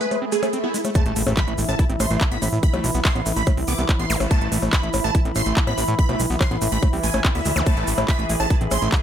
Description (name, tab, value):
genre	psychedelic trance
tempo	143 BPM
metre	4/4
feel	straight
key	A harmonic minor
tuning	A4 = 440 Hz
part	supersaw stab	melody	0.0-8.9 s	E4 to D6	-28 LUFS	right 3 dB	phaser, sidechain pumping, ping-pong delay
part	bubbling stepped-filter texture	sustained chords	0.0-9.0 s	E3 to G#4	-28 LUFS	equal	chorus, built-in reverb, sidechain pumping
part	overdriven acid bass	riff	0.0-9.0 s	G#3 to E4	-29 LUFS	moving between left 5 dB and right 5 dB	distortion, auto-pan, cassette tape, sidechain pumping, digital delay
part	techno drum kit	drums	0.0-9.0 s	handclaps, hi-hat, percussion blips	-26 LUFS	left 2 dB	none
part	tube shaker	percussion	0.0-9.0 s	none	-34 LUFS	right 5 dB	none
part	granular cloud pad	texture	0.0-9.0 s	E5 to B5	-31 LUFS	equal	built-in reverb, sidechain pumping
part	swell, impact and zap	sound effects	0.2-4.2, 7.6-7.7 s	none	-30 LUFS	right 1 dB	none
part	electronic kick drum	drums	1.0-9.0 s	none	-19 LUFS	equal	none
part	fat analog bass	bass	1.1-8.9 s	A1 to A2	-24 LUFS	equal	tube saturation
room	light reverb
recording	low-pass filter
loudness	-18 LUFS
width	side -10 dB against mid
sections	1.0-9.0 A section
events	swell 0.2-1.0; drop 1.0-9.0; impact 1.0-2.6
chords	0.0 A5